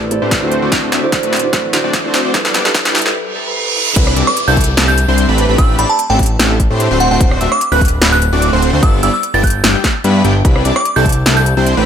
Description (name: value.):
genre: future bass.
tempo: 148 BPM.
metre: 4/4.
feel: swing 53% on 16ths, half-time.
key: unclear.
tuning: A4 = 439 Hz.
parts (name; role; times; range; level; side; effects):
felt-muted upright piano; accompaniment; 0.0-3.2 s; D3 to D5; -20 LUFS; right 3 dB; sidechain pumping, dub echo.
concert harp; arpeggios; 0.0-6.4 s; E4 to D5; -24 LUFS; right 1 dB; sidechain pumping, dub echo.
big bright polysynth; riff; 0.0-11.9 s; G3 to E5; -18 LUFS; left 1 dB; sidechain pumping.
fat analog bass; bass; 0.0-11.9 s; D1 to A2; -16 LUFS; equal; sidechain pumping.
riser, reverse cymbal and downlifter; sound effects; 1.0-7.2 s; none; -22 LUFS; right 3 dB; none.
big-room dance drum kit; drums; 0.1-11.8 s; crash cymbal, hi-hat, rim click, snare drum; -16 LUFS; equal; high-pass filter on snare, high-pass filter on hats, high-pass filter on cymbals, high-pass filter on room.
electronic kick drum; drums; 0.3-11.1 s; none; -14 LUFS; equal; none.
airy dreamy lead; arpeggios; 4.0-11.9 s; G4 to E5; -22 LUFS; equal; chorus, sidechain pumping, dub echo.
glassy synth bell; melody; 4.3-11.7 s; F#5 to A6; -17 LUFS; right 2 dB; chorus, sidechain pumping, ping-pong delay.
room: light reverb, digital ambience.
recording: high-pass filter.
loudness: -10 LUFS.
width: side -8 dB against mid.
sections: 0.0-4.0 A section; 4.0-11.9 B section.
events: build-up 0.0-4.0; drum fill 0.0-3.2; filter sweep on analog polysynth 0.0-4.0; filter sweep 0.0-4.0; break 3.2-4.0; reverse cymbal 3.2-4.0; drop 4.0-11.9.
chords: 0.0 Am11; 2.3 G69; 4.0 Cmaj9; 5.4 Am11; 7.0 D7; 8.8 G69; 10.4 Cmaj9.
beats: 0.31 | 0.72 1.12 1.53 1.94 | 2.34 2.75 3.15 3.56 | 3.96 4.37 4.77 5.18 | 5.58 5.99 6.39 6.80 | 7.21 7.61 8.02 8.42 | 8.83 9.23 9.64 10.04 | 10.45 10.85 11.26 11.66.